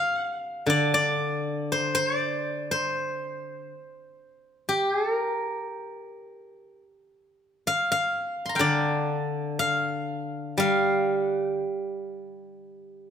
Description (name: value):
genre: chinese traditional, Chinese solo plucked strings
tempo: 60 BPM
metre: 4/4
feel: rubato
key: G yu mode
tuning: A4 = 440 Hz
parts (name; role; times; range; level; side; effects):
- steel-string zither; solo; 0.0-13.1 s; D3 to C6; -25 LUFS; equal; none
room: moderate recital hall reverb, RT60 1.7 s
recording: none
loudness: -24 LUFS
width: side -8 dB against mid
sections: 0.0-13.1 A section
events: none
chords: none